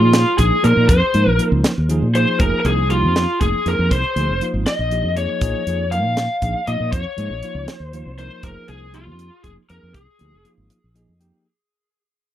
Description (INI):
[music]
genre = electric jazz fusion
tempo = 80 BPM (dotted quarters)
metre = 6/8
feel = straight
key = unclear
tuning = A4 = 440 Hz
[part]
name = lead guitar through a small cranked amp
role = melody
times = 0.0-10.5 s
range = F4 to F5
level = -20 LUFS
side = left 1 dB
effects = overdrive
[part]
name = bell-like tine electric piano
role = accompaniment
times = 0.0-11.5 s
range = F3 to G5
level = -25 LUFS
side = right 1 dB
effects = medium stereo tremolo
[part]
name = mellow fretless electric bass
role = bass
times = 0.0-11.3 s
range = F1 to Bb2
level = -19 LUFS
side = equal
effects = none
[part]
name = tight funk drum kit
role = drums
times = 0.1-11.3 s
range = hi-hat, kick drum, snare drum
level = -20 LUFS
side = equal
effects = none
[sound]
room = little or no reverb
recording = dry, close 1970s-style studio recording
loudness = -16 LUFS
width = side -11 dB against mid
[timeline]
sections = 0.0-11.5 A section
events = fade-out 0.0-11.5; tine electric piano fill 10.7-11.5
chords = 0.0 Bb7sus2; 2.4 Fm9; 5.4 Bbm7; 8.4 Fm9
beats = 0.14 | 0.89 1.65 | 2.40 3.16 | 3.91 4.67 | 5.42 6.17 | 6.93 7.68 | 8.44 9.19 | 9.95 10.70